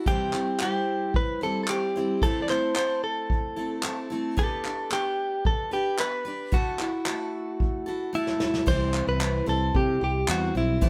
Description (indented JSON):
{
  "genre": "acoustic pop",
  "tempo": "112 BPM",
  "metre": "4/4",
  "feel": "straight",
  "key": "unclear",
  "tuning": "A4 = 441 Hz",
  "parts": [
    { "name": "picked steel-string acoustic guitar", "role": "accompaniment", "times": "0.0-10.9 s", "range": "A2 to C5", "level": "-33 LUFS", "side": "equal", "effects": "none" },
    { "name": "direct-recorded clean electric guitar", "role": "melody", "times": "0.1-10.9 s", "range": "E4 to D5", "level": "-30 LUFS", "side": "equal", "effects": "vibrato effect" },
    { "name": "vintage brush drum kit", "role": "drums", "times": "0.1-10.9 s", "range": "crash cymbal, handclaps, kick drum, snare drum", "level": "-30 LUFS", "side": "equal", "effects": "none" },
    { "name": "flamenco guitar", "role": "arpeggios", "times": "8.7-10.9 s", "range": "G4 to C5", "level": "-38 LUFS", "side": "equal", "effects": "none" },
    { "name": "fretless electric bass", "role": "bass", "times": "8.7-10.9 s", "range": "A1 to C3", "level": "-30 LUFS", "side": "equal", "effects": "none" }
  ],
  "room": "light reverb",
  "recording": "band playing live in one room",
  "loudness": "-27 LUFS",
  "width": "mono",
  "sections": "0.0-8.7 A section; 8.7-10.9 B section",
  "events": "drum fill 7.6-8.7",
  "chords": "0.1 C; 2.2 Am; 4.4 G/B; 6.5 Dadd9; 8.7 C",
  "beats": "| 0.06 0.60 1.14 1.68 | 2.22 2.76 3.30 3.83 | 4.37 4.91 5.45 5.99 | 6.52 7.06 7.60 8.14 | 8.67 9.21 9.75 10.28 | 10.82"
}